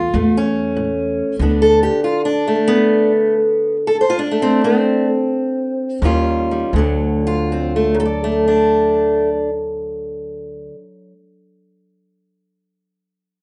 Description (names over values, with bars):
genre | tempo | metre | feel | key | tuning
acoustic country blues, solo or duo | 83-95 BPM | 4/4 | swing 67% on 8ths | D mixolydian | A4 = 439 Hz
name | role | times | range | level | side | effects
fingerpicked steel-string acoustic guitar | melody | 0.0-11.1 s | D2 to D5 | -18 LUFS | equal | slapback echo
upright bass | bass | 0.0-1.9, 6.0-10.7 s | D2 to E2 | -24 LUFS | equal | none
room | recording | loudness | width
moderate small room reverb, RT60 0.5 s | rough home demo mix, nothing above 10.5 kHz | -17 LUFS | mono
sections
0.0-6.7 A section; 6.7-9.6 B section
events
slowing down 1.4-6.7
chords
0.0 A; 1.4 D5; 6.0 Eb9; 6.7 D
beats
0.14 0.77 | 1.41 2.04 2.68 3.33 | 3.98 4.65 5.33 6.02 | 6.73 7.46 8.18 8.90